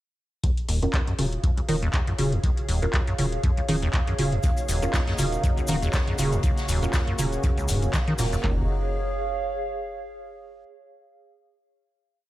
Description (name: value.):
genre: acid house.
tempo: 120 BPM.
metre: 4/4.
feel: swing 56% on 16ths.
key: unclear.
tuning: A4 = 437 Hz.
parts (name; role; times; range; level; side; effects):
acid bass, square; riff; 0.4-8.7 s; Db2 to Eb3; -27 LUFS; equal; tube saturation, analog chorus, sidechain pumping, tape echo.
booming analog drum machine; drums; 0.4-8.6 s; handclaps, kick drum, snare drum; -25 LUFS; equal; studio reverb.
booming analog drum machine; drums; 0.4-8.4 s; handclaps, hi-hat; -32 LUFS; left 1 dB; studio reverb.
warbly tape-like pad; texture; 1.1-10.4 s; Ab4 to F5; -33 LUFS; right 2 dB; chorus, built-in reverb, phaser, sidechain pumping.
warm sub bass; bass; 0.7-8.7 s; Eb1; -30 LUFS; equal; sidechain pumping.
deep mellow chord stab; stabs; 0.8-8.6 s; Db4 to Bb4; -34 LUFS; right 3 dB; chorus, tape echo.
warm analog pad; sustained chords; 4.4-8.7 s; Db3 to Gb4; -34 LUFS; left 1 dB; chorus, tremolo, sidechain pumping.
swinging big-band drum kit; drums; 4.4-8.3 s; hi-hat, snare drum; -40 LUFS; left 2 dB; sidechain pumping on hats, high-pass filter on hats, studio reverb, high-pass filter on snare, high-pass filter on room.
tube shaker; percussion; 4.4-8.4 s; none; -37 LUFS; left 2 dB; none.
room: light reverb, small room ambience.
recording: none.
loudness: -22 LUFS.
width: side -15 dB against mid.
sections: 0.4-8.4 groove; 8.4-10.4 final chord.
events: none.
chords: 0.4 Ebm7.